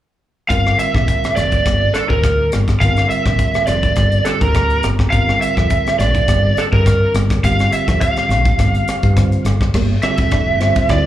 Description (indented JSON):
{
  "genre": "electric jazz fusion",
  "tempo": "104 BPM",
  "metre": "4/4",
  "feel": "swing 54% on 16ths",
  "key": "G dorian",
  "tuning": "A4 = 440 Hz",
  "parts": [
    { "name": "lead guitar through a small cranked amp", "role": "melody", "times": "0.5-11.1 s", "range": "A4 to F5", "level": "-18 LUFS", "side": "right 1 dB", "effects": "overdrive, slapback echo, tape echo" },
    { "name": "bell-like tine electric piano", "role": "accompaniment", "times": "0.5-11.1 s", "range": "D3 to C5", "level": "-24 LUFS", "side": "right 1 dB", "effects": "medium stereo tremolo, slapback echo" },
    { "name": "woody fretless electric bass", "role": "bass", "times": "0.5-11.1 s", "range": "F1 to G2", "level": "-17 LUFS", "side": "equal", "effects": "none" },
    { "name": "crisp fusion drum kit", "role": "drums", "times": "0.5-11.0 s", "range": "crash cymbal, hi-hat, kick drum, ride cymbal, rim click", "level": "-18 LUFS", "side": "equal", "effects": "none" },
    { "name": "electric guitar at the edge of break-up", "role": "stabs", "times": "9.7-11.1 s", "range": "Bb3 to E4", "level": "-26 LUFS", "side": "right 6 dB", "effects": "ensemble chorus, slapback echo" }
  ],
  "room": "studio ambience",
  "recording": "live gig heard through the venue's PA, club reverb",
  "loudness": "-13 LUFS",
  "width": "side -12 dB against mid",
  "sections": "0.5-9.7 A section; 9.7-11.1 B section",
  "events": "none",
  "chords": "0.5 Gm7; 5.1 C7sus4/G; 9.5 N.C.; 9.7 Gm9"
}